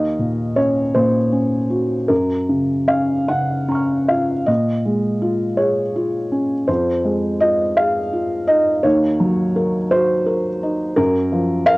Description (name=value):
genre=neoclassical minimalist piano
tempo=50-58 BPM (dotted quarters)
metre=6/8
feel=rubato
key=Bb minor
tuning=A4 = 438 Hz
part: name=felt-muted upright piano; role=solo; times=0.0-11.8 s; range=Eb2 to F6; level=-16 LUFS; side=equal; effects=none
room=light reverb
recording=home recording on cassette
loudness=-16 LUFS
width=side -22 dB against mid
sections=0.0-4.5 A section; 4.5-11.8 B section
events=none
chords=0.0 Ebm7; 2.1 Gbmaj7; 4.5 Bbm7; 6.7 Fm7; 8.8 Ebm7; 11.0 Gbmaj7